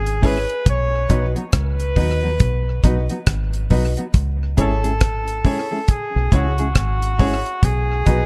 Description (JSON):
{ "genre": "roots reggae", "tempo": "69 BPM", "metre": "4/4", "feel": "swing 60% on 16ths", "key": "C# minor", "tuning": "A4 = 440 Hz", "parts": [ { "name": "clear flugelhorn", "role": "melody", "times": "0.0-8.3 s", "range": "F#4 to C#5", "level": "-27 LUFS", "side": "equal", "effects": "tape echo" }, { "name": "deep dub fingered electric bass", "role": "bass", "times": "0.0-8.3 s", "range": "G#1 to D#2", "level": "-23 LUFS", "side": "equal", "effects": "none" }, { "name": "deep reggae drum kit", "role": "drums", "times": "0.1-8.3 s", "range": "hi-hat, kick drum, rim click", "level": "-20 LUFS", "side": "equal", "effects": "none" }, { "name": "mellow electric guitar", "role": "accompaniment", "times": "0.2-8.2 s", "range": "F#3 to G#4", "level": "-28 LUFS", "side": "equal", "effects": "tape echo" }, { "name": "clear upright piano", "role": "stabs", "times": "0.2-8.3 s", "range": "D#4 to C#5", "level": "-30 LUFS", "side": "equal", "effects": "none" } ], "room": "small room ambience", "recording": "lossy compression artefacts", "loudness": "-19 LUFS", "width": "mono", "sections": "0.0-8.3 A section", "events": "none", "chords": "0.0 C#m; 0.7 B; 4.1 C#m; 7.6 B" }